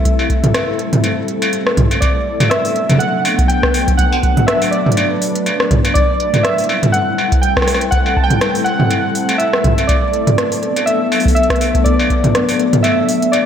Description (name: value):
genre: IDM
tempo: 122 BPM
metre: 4/4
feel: swing 56% on 16ths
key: B phrygian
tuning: A4 = 439 Hz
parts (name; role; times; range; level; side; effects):
- warbly lo-fi synth keys; melody; 0.0-13.5 s; D5 to A5; -18 LUFS; right 1 dB; chorus, slapback echo, digital delay
- glassy FM pad; sustained chords; 0.0-13.5 s; F#3 to B4; -19 LUFS; left 2 dB; ensemble chorus, built-in reverb, sidechain pumping
- electronic kick drum; drums; 0.1-12.2 s; none; -15 LUFS; equal; overdrive
- industrial drum kit; drums; 0.1-13.4 s; hi-hat, rim click, struck metal, toms; -16 LUFS; right 1 dB; none
room: wet concert hall reverb, RT60 1.9 s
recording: big arena sound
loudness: -12 LUFS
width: side -8 dB against mid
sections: 0.0-13.5 A section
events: none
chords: 0.0 C6; 2.0 Bm7; 6.0 C6; 9.9 Bm7